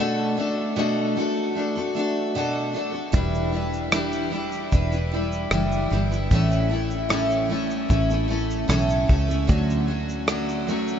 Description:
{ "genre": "acoustic pop", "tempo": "76 BPM", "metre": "4/4", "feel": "straight", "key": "B minor", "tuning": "A4 = 440 Hz", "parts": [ { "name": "picked steel-string acoustic guitar", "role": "accompaniment", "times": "0.0-11.0 s", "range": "A2 to B4", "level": "-23 LUFS", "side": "equal", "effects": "double-tracked left and right" }, { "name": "fingered electric bass", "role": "bass", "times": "3.1-11.0 s", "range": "E1 to D2", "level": "-25 LUFS", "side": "equal", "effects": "none" }, { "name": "loose indie drum kit", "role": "drums", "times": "3.1-11.0 s", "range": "kick drum, rim click, shaker", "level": "-26 LUFS", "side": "equal", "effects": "none" } ], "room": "moderate huge ambient reverb, RT60 7.8 s", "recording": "dreamy mix soaked in reverb, nothing above 7.7 kHz", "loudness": "-21 LUFS", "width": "side -8 dB against mid", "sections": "0.0-11.0 A section", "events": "none", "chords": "0.0 Bm7; 3.1 Em7; 6.3 A; 9.5 Dmaj7" }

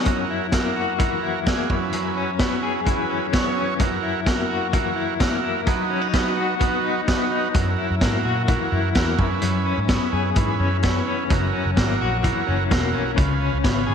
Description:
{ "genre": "jangly indie pop", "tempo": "128 BPM", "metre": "4/4", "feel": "straight", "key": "F# mixolydian", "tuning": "A4 = 440 Hz", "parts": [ { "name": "direct-recorded clean electric guitar", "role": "arpeggios", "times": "0.0-13.9 s", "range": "F#2 to G#4", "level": "-24 LUFS", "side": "left 7 dB", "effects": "tremolo" }, { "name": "combo organ", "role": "accompaniment", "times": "0.1-13.9 s", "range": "F#3 to C#5", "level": "-25 LUFS", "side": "right 8 dB", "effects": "none" }, { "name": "vintage drum kit", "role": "drums", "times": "0.1-13.8 s", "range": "hi-hat, kick drum, snare drum", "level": "-23 LUFS", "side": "equal", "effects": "none" }, { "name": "vintage muted picked electric bass", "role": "bass", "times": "7.6-13.9 s", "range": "E1 to A#2", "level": "-24 LUFS", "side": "equal", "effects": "none" } ], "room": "moderate echo chamber reverb, RT60 1.4 s, small room ambience", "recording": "1960s-style stereo with parts hard left and right", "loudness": "-19 LUFS", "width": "side -7 dB against mid", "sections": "0.1-13.9 A section", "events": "none", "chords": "0.1 F#7; 1.7 C#m7/F#; 3.8 F#7; 5.7 B/F#; 7.5 F#7; 9.2 C#m7/F#; 11.3 F#7; 13.2 C#7" }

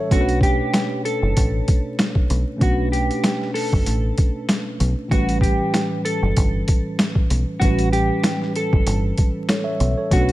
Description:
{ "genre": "hip hop, boom-bap hip-hop", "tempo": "96 BPM", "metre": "4/4", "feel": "swing 55% on 16ths", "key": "unclear", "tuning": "A4 = 440 Hz", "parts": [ { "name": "mellow tine electric piano", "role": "accompaniment", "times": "0.0-10.3 s", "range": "A2 to E5", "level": "-24 LUFS", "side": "right 1 dB", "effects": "fast stereo tremolo, cassette tape, high-pass filter, low-pass filter" }, { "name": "mellow electric guitar", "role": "melody", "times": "0.1-10.3 s", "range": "F#4 to A4", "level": "-25 LUFS", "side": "equal", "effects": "analog chorus, high-pass filter, low-pass filter" }, { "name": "deep dub fingered electric bass", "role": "bass", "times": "0.1-10.3 s", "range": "F#1 to B1", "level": "-21 LUFS", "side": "equal", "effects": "none" }, { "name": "boom bap sampler-style drum kit", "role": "drums", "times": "0.1-10.3 s", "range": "hi-hat, kick drum, snare drum", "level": "-19 LUFS", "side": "equal", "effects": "overdrive" } ], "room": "digital ambience", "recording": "vinyl crackle", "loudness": "-17 LUFS", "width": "side -16 dB against mid", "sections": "0.0-10.3 A section", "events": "none", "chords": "0.1 Bm9; 5.1 A7" }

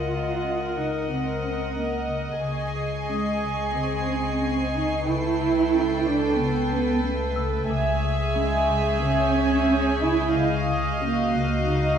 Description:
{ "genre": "cinematic", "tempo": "91 BPM", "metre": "4/4", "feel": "straight", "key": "C# hungarian minor", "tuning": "A4 = 441 Hz", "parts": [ { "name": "warm symphonic violin section", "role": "melody", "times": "0.0-12.0 s", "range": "E#5 to G#5", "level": "-32 LUFS", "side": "equal", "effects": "none" }, { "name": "warm symphonic violin section", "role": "second line", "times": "0.0-12.0 s", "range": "B4 to E5", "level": "-30 LUFS", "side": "equal", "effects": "none" }, { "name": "warm studio viola section", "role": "accompaniment", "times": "0.0-12.0 s", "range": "F#4 to A#4", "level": "-31 LUFS", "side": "right 1 dB", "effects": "none" }, { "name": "dark symphonic cello section", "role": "bass", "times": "0.0-12.0 s", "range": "G#3 to E#4", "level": "-26 LUFS", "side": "right 4 dB", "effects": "none" }, { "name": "rich studio double bass section", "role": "bass", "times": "0.0-12.0 s", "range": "C#2", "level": "-31 LUFS", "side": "right 1 dB", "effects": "none" }, { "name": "celesta", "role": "texture", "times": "0.0-12.0 s", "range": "D#5 to E6", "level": "-36 LUFS", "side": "equal", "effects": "none" }, { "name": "folk marimba with soft mallets", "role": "riff", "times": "0.1-11.9 s", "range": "C#3 to C#4", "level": "-30 LUFS", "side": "left 4 dB", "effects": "none" }, { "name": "warm symphonic violin section", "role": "texture", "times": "2.4-12.0 s", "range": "C#6 to B#6", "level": "-37 LUFS", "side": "left 2 dB", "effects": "none" } ], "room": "moderate scoring stage reverb, RT60 1.7 s", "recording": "vinyl crackle, studio reverb", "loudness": "-22 LUFS", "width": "side -8 dB against mid", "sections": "0.0-12.0 A section", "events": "none", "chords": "0.0 D#madd9/C#; 2.4 G#/C#; 5.1 Gadd9/C#; 7.7 C#m; 10.4 D#madd9/C#" }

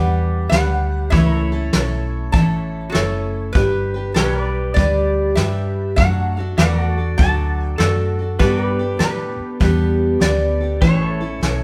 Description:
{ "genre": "honky-tonk and classic country", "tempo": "99 BPM", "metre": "4/4", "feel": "swing 66% on 8ths", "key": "unclear", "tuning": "A4 = 440 Hz", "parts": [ { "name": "lap resonator guitar", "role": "melody", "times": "0.0-11.6 s", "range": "F#4 to A5", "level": "-26 LUFS", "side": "equal", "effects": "none" }, { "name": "picked steel-string acoustic guitar", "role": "accompaniment", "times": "0.0-11.6 s", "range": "A2 to B4", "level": "-24 LUFS", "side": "equal", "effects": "none" }, { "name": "pedal steel guitar", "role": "sustained chords", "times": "0.0-11.6 s", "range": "E4 to E5", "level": "-32 LUFS", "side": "equal", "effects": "none" }, { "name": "vintage muted fingered electric bass", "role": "bass", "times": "0.0-11.6 s", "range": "F#1 to A2", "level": "-23 LUFS", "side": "equal", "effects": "none" }, { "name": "clear grand piano", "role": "accompaniment", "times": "0.5-11.6 s", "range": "E4 to D5", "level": "-34 LUFS", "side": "equal", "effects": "none" }, { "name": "soft brush drum kit", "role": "drums", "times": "0.5-11.6 s", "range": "hi-hat, kick drum, snare drum", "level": "-21 LUFS", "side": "equal", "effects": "none" } ], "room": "moderate stone room reverb, RT60 1.0 s", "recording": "band playing live in one room", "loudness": "-18 LUFS", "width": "mono", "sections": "0.0-11.6 A section", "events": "none", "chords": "0.0 G; 1.1 A; 3.6 G; 6.0 D; 8.4 Gadd9; 10.8 A" }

